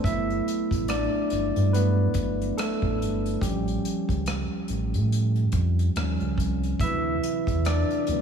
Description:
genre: R&B, neo-soul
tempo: 71 BPM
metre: 4/4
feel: swing 58% on 16ths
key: unclear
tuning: A4 = 440 Hz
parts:
  - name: barky tine electric piano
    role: accompaniment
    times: 0.0-8.2 s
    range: C3 to E5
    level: -26 LUFS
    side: right 1 dB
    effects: none
  - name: round analog bass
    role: bass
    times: 0.0-8.2 s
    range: G1 to A2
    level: -25 LUFS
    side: equal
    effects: none
  - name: unplugged drum kit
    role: drums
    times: 0.0-8.2 s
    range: hi-hat, kick drum, rim click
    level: -31 LUFS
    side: equal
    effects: none
room: moderate church reverb, RT60 2.9 s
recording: dreamy mix soaked in reverb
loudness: -23 LUFS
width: side -7 dB against mid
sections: 0.0-8.2 A section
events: tine electric piano solo 0.0-8.2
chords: 0.0 Gmaj9; 3.4 Aaug7; 6.0 Eb9; 6.8 D13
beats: | 0.04 0.88 1.73 2.57 | 3.42 4.26 5.11 5.96 | 6.80 7.64

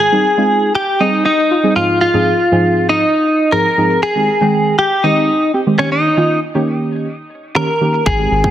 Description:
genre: dance-pop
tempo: 119 BPM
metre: 4/4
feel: straight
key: Ab major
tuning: A4 = 440 Hz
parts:
  - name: direct-recorded clean electric guitar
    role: melody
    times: 0.0-8.5 s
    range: Db4 to Bb4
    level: -13 LUFS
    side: equal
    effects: analog chorus, tape echo
  - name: deep mellow chord stab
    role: accompaniment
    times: 0.1-8.5 s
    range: Ab2 to G5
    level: -16 LUFS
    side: right 1 dB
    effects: chorus, sidechain pumping
  - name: saturated sub bass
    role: bass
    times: 8.1-8.5 s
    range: Ab1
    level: -17 LUFS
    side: equal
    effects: sidechain pumping
  - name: electronic kick drum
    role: drums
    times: 8.1-8.5 s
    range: none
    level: -18 LUFS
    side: equal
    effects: none
room: light reverb, digital ambience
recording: dense, heavily limited modern master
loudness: -12 LUFS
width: side -11 dB against mid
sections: 0.0-8.5 A section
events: none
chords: 0.0 Abmaj7; 1.8 Fm7/Ab; 4.0 Abmaj7; 5.8 Eb7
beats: | 0.00 0.50 1.00 1.51 | 2.01 2.52 3.02 3.52 | 4.03 4.53 5.04 5.54 | 6.05 6.55 7.05 7.56 | 8.06

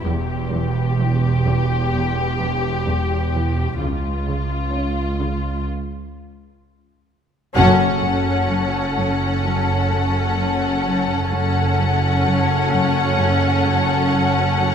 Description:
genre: cinematic, suspense film score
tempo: 64 BPM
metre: 4/4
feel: straight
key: F# harmonic minor from 7.6 s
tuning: A4 = 440 Hz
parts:
  - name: muted symphonic violin section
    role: melody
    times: 0.0-14.7 s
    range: E#4 to F#5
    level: -24 LUFS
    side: left 4 dB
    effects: none
  - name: muted chamber cello section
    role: bass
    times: 0.0-14.7 s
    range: C#2 to F#2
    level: -26 LUFS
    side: right 1 dB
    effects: none
  - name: music box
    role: texture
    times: 0.0-1.4, 7.6-14.7 s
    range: F#4 to E#6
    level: -27 LUFS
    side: right 3 dB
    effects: none
  - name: muted studio cello section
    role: riff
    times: 0.1-14.7 s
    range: E2 to C#4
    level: -26 LUFS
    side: left 1 dB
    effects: none
  - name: muted symphonic double bass section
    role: bass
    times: 0.1-14.7 s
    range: E1 to C#2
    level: -22 LUFS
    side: right 3 dB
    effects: none
  - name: muted symphonic violin section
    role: second line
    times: 7.6-14.7 s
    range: A4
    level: -25 LUFS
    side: left 4 dB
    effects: none
  - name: muted symphonic viola section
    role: accompaniment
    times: 7.6-14.7 s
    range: C#4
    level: -22 LUFS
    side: equal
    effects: none
room: moderate scoring stage reverb, RT60 2.0 s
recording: minimal, uncompressed stereo recording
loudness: -17 LUFS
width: side -7 dB against mid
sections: 0.0-7.6 A section; 7.6-14.7 B section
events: break 5.7-7.6; band accent 7.6-8.5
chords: 0.1 Em; 3.8 C#; 7.6 F#m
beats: | 0.06 1.00 1.94 2.87 | 3.81 4.75 5.69 6.62 | 7.56 8.50 9.44 10.37 | 11.31 12.25 13.19 14.12

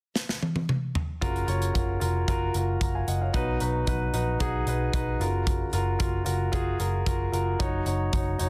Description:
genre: piano-driven pop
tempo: 113 BPM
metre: 4/4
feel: straight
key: F# major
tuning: A4 = 438 Hz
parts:
  - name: modern studio drum kit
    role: drums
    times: 0.2-8.5 s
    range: hi-hat, kick drum, snare drum, toms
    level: -32 LUFS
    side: equal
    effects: none
  - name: warm concert grand piano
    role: accompaniment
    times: 1.2-8.5 s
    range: B2 to A#5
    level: -31 LUFS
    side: equal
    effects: none
  - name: vintage muted picked electric bass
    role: bass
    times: 1.2-8.5 s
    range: E#1 to B1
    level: -31 LUFS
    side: equal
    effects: none
room: light reverb, small room reverb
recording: dense, heavily limited modern master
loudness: -27 LUFS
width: mono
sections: 0.0-1.2 A section; 1.2-8.5 B section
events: drum fill 0.2-1.2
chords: 0.0 N.C.; 1.2 F#maj7; 3.3 B; 5.2 F#maj7; 7.6 D#m7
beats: 0.15 0.69 | 1.22 1.75 2.28 2.81 | 3.35 3.88 4.41 4.94 | 5.47 6.00 6.54 7.07 | 7.60 8.13

